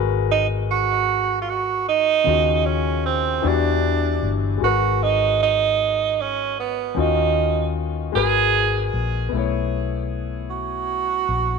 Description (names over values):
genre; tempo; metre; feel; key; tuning
slow six-eight R&B; 51 BPM (dotted quarters); 6/8; straight; G# minor; A4 = 440 Hz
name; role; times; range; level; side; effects
warm concert grand piano; accompaniment; 0.0-11.6 s; C#3 to C#5; -25 LUFS; left 17 dB; none
vintage muted fingered electric bass; bass; 0.0-11.6 s; G1 to E2; -25 LUFS; left 2 dB; none
clear tenor saxophone; melody; 0.3-11.6 s; B3 to G#4; -20 LUFS; right 10 dB; none
room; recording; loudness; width
moderate echo chamber reverb, RT60 2.0 s, studio ambience; 1960s-style stereo with parts hard left and right; -18 LUFS; side -5 dB against mid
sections
0.0-9.3 A section; 9.3-11.6 B section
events
none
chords
0.0 G#m9; 2.2 D#m9; 3.4 Em9; 4.6 G#m9; 7.0 D#m9; 8.1 G#m9; 9.3 B9sus4